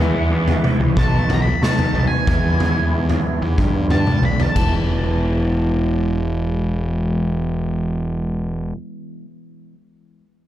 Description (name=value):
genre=psychedelic rock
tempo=92 BPM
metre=4/4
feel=straight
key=E major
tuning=A4 = 440 Hz
part: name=biting overdriven guitar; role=riff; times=0.0-8.8 s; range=G2 to E4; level=-22 LUFS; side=right 1 dB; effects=rotary speaker, low-pass filter, analog delay
part: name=fuzz picked electric bass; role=bass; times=0.0-8.7 s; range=E1 to G2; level=-21 LUFS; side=equal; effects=overdrive
part: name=raw garage drum kit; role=drums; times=0.5-4.7 s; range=crash cymbal, kick drum, snare drum, toms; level=-20 LUFS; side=equal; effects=none
part: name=octave-fuzz lead guitar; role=melody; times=1.0-4.7 s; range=G#5 to B5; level=-26 LUFS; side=equal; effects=wah, distortion, analog delay
room=small room ambience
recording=echo-heavy mix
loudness=-16 LUFS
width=side -12 dB against mid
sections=0.0-4.9 A section; 4.9-7.5 B section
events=lead electric guitar solo 0.0-4.9; filter sweep on overdriven electric guitar 0.0-4.9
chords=0.0 E; 1.0 B; 2.3 E; 3.6 G; 4.6 E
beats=0.32 0.97 1.62 | 2.27 2.92 3.58 4.23 | 4.89 5.54 6.20 6.85